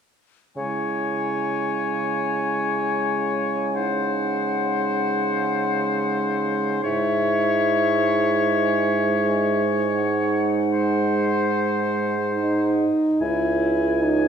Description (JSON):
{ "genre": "classical, slow romantic movement for wind quintet", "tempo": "76 BPM", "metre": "4/4", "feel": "rubato", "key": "C# minor", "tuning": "A4 = 440 Hz", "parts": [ { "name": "concert flute", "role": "melody", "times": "0.6-12.8 s", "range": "E5 to G#5", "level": "-28 LUFS", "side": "left 5 dB", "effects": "none" }, { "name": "bright oboe", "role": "second line", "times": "0.6-14.3 s", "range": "B#4 to G#5", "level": "-26 LUFS", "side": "left 4 dB", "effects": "none" }, { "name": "warm French horn", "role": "accompaniment", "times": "0.6-14.3 s", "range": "G#3 to E4", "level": "-26 LUFS", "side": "equal", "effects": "none" }, { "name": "warm clarinet", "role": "accompaniment", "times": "0.6-14.3 s", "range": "D#4 to C#5", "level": "-29 LUFS", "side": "right 7 dB", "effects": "none" }, { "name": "mellow bassoon", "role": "bass", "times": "0.6-14.3 s", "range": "C#2 to C#3", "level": "-25 LUFS", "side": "right 3 dB", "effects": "none" } ], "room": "wet recital hall reverb, RT60 1.5 s", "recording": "heard from further back in the room", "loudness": "-20 LUFS", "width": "side -7 dB against mid", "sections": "0.6-13.2 A section; 13.2-14.3 B section", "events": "none", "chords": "0.6 C#m; 3.7 G#7/C#; 6.8 C#m/G#; 9.9 G#7; 13.2 C#m" }